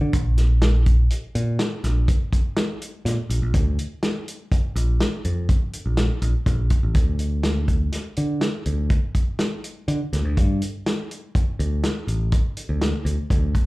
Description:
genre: progressive instrumental, band music in an uneven meter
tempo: 123 BPM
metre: 7/4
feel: straight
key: D minor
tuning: A4 = 440 Hz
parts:
  - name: picked electric bass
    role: bass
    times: 0.0-13.5 s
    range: A1 to D3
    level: -20 LUFS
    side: equal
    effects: none
  - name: warm soul drum kit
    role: drums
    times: 0.1-13.7 s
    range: hi-hat, kick drum, snare drum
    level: -22 LUFS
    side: equal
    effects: none
room: little or no reverb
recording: live gig heard through the venue's PA, club reverb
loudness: -20 LUFS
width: side -20 dB against mid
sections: 0.0-7.0 A section; 7.0-13.7 B section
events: none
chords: none

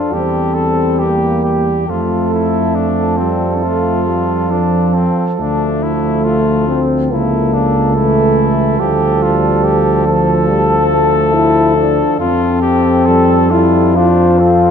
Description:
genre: classical, hymn-like piece for brass band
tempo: 69 BPM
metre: 4/4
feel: rubato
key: unclear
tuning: A4 = 440 Hz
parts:
  - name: warm cornet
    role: melody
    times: 0.0-14.7 s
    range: C4 to A4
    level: -19 LUFS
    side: left 7 dB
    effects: none
  - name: warm flugelhorn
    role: second line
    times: 0.0-14.7 s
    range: G4 to C5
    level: -18 LUFS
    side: right 6 dB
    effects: none
  - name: clear trombone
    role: accompaniment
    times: 0.0-14.7 s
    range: E3 to G3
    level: -22 LUFS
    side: right 4 dB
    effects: none
  - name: dark trombone section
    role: accompaniment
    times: 0.0-14.7 s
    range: F3 to F4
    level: -16 LUFS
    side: left 2 dB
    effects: none
  - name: mellow tuba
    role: bass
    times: 0.0-14.7 s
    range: C#2 to F2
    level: -17 LUFS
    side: right 1 dB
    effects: none
room: moderate concert hall reverb, RT60 2.3 s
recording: dark, warm production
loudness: -11 LUFS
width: side -7 dB against mid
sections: 0.0-14.7 A section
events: none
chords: 0.1 C/E; 1.9 F; 5.4 Dm; 7.1 A/C#; 8.8 Dm; 12.2 F

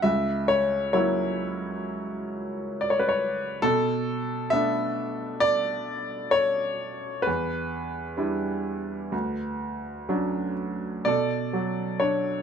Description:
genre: classical, lyrical solo piano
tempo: 65 BPM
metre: 4/4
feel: uneven beats, rubato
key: D major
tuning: A4 = 440 Hz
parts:
  - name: clear baby grand piano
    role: solo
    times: 0.0-12.4 s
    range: C#2 to E5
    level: -24 LUFS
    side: equal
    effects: none
room: light reverb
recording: minimal, uncompressed stereo recording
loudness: -24 LUFS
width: side -7 dB against mid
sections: 0.0-11.1 A section; 11.1-12.4 B section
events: none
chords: 0.0 F#7/C#; 3.6 Bm7; 7.3 Em7; 9.1 Dmaj7; 11.1 Bm7

